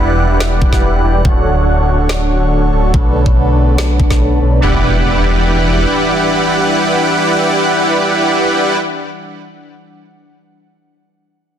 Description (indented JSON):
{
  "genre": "future bass",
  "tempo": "142 BPM",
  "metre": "4/4",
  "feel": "half-time",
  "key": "E dorian",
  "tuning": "A4 = 440 Hz",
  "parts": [
    { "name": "airy breathy pad", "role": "sustained chords", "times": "0.0-8.8 s", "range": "D3 to F#5", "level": "-22 LUFS", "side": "equal", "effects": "chorus, sidechain pumping" },
    { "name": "dense compressed supersaw", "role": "riff", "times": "0.0-8.8 s", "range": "D4 to A5", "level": "-14 LUFS", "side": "right 1 dB", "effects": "sidechain pumping, low-pass filter, ping-pong delay" },
    { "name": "wide detuned saw bass", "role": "bass", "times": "0.0-5.9 s", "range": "D1 to B1", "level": "-14 LUFS", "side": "equal", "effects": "chorus, sidechain pumping" },
    { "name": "electronic snare drum", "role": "drums", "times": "0.4-4.2 s", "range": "none", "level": "-22 LUFS", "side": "equal", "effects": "soft clipping on snare" },
    { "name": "electronic kick drum", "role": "drums", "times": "0.6-4.2 s", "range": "none", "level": "-13 LUFS", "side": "equal", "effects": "none" },
    { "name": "impact", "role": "sound effects", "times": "4.6-9.1 s", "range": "none", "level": "-23 LUFS", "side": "equal", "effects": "none" }
  ],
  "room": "light reverb",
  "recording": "dense, heavily limited modern master",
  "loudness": "-10 LUFS",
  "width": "side -9 dB against mid",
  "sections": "0.0-4.6 A section; 4.6-8.0 B section",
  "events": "filter sweep on supersaw synth 0.0-4.6",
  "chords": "0.0 Em9; 1.2 Dmaj7; 2.9 Bm9; 4.6 Em9"
}